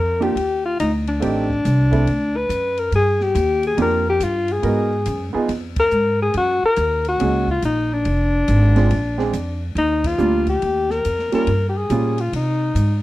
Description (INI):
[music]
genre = jazz, small-group swing and bop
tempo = 140 BPM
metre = 4/4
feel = swing 65% on 8ths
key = Eb major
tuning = A4 = 436 Hz
[part]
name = breathy alto saxophone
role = melody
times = 0.0-13.0 s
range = D4 to Cb5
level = -20 LUFS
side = left 2 dB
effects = slapback echo
[part]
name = upright bass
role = bass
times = 0.0-13.0 s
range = F1 to C3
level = -21 LUFS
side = equal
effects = none
[part]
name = warm concert grand piano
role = accompaniment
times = 0.2-12.2 s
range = G3 to Bb4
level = -22 LUFS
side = right 4 dB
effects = none
[part]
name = open jazz drum kit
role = drums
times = 0.2-12.9 s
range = hi-hat, kick drum, ride cymbal, snare drum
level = -33 LUFS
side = equal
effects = none
[sound]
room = small room ambience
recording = dry, close 1970s-style studio recording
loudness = -17 LUFS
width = side -16 dB against mid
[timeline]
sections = 0.0-13.0 A section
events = band accent 5.7, 10.0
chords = 0.0 Ebmaj7; 1.2 Am7b5; 2.1 D; 2.9 Gm7; 4.6 Abm7; 5.5 Fmadd11; 6.3 Gb6; 8.1 Fm; 8.9 Bb7; 9.8 Ebmaj7; 11.5 Gm7b5; 12.3 Cm